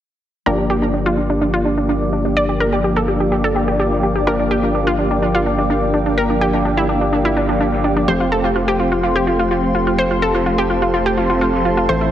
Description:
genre	progressive house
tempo	126 BPM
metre	4/4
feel	straight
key	G minor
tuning	A4 = 440 Hz
part	evolving wavetable pad	sustained chords	1.2-12.1 s	A4 to D6	-23 LUFS	right 1 dB	chorus, built-in reverb, vintage 12-bit sampler grit
part	analog pluck	arpeggios	0.5-12.1 s	D4 to D5	-19 LUFS	right 1 dB	chorus, digital delay
part	supersaw stab	stabs	0.5-12.1 s	E3 to D5	-19 LUFS	left 1 dB	cassette tape, low-pass filter, digital delay
part	saturated sub bass	bass	0.5-12.1 s	F1 to A1	-24 LUFS	equal	none
part	raw garage drum kit	drums	0.5-12.0 s	hi-hat, snare drum	-39 LUFS	equal	none
room	light reverb, small room ambience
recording	heavily compressed radio sound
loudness	-14 LUFS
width	side -11 dB against mid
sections	0.5-12.1 A section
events	filter sweep on ambient pad 0.5-12.1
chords	0.5 Gm7; 8.1 Fadd9

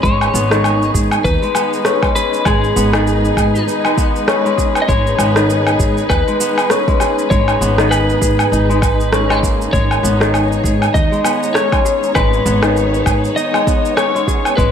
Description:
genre	organic downtempo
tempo	99 BPM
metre	4/4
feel	swing 58% on 16ths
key	G# minor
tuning	A4 = 439 Hz
part	electric slide guitar	melody	0.0-14.7 s	G#4 to D#5	-19 LUFS	left 2 dB	ping-pong delay
part	muted studio string section	sustained chords	0.0-14.7 s	G#3 to C#5	-23 LUFS	equal	sidechain pumping
part	kora	arpeggios	0.0-14.7 s	D#3 to G#4	-19 LUFS	left 3 dB	low-pass filter, ping-pong delay
part	upright bass	bass	0.0-14.7 s	G#1 to G#2	-18 LUFS	equal	none
part	electronic kick drum	drums	0.0-14.7 s	none	-18 LUFS	right 1 dB	overdrive
part	electronic shaker, woodblock and rim click	drums	0.0-14.7 s	none	-19 LUFS	right 1 dB	overdrive
part	wind-like tuned noise texture	texture	0.0-14.7 s	B3 to D#5	-26 LUFS	equal	built-in reverb
room	moderate echo chamber reverb, RT60 2.1 s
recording	none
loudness	-12 LUFS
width	side -8 dB against mid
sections	0.0-14.7 A section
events	none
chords	0.0 G#m

